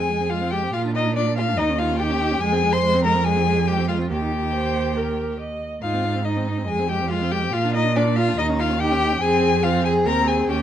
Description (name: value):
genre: quick classical-period movement for string quartet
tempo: 142 BPM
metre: 4/4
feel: straight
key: unclear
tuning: A4 = 439 Hz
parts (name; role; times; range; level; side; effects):
- warm violin; melody; 0.0-10.6 s; D5 to C6; -24 LUFS; left 6 dB; none
- rich violin; second line; 0.0-10.6 s; D4 to C5; -24 LUFS; left 2 dB; none
- rich viola; accompaniment; 0.0-10.6 s; Ab3 to Eb5; -27 LUFS; right 3 dB; none
- rich cello; bass; 0.0-10.6 s; Eb2 to Bb2; -23 LUFS; right 4 dB; none
room: light reverb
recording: dark, warm production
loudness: -19 LUFS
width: side -10 dB against mid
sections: 0.0-10.6 A section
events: none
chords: 0.0 Fm; 0.7 Bb; 1.6 Eb7; 2.4 Fm; 4.1 Eb; 5.8 Ab; 6.7 Fm; 7.5 Bb; 8.4 Eb7; 9.2 Fm; 10.1 Ab/Eb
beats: 0.31 | 0.73 1.16 1.58 2.00 | 2.41 2.83 3.25 3.67 | 4.10 4.53 4.97 5.40 | 5.83 6.26 6.68 7.11 | 7.54 7.96 8.38 8.80 | 9.22 9.64 10.06 10.48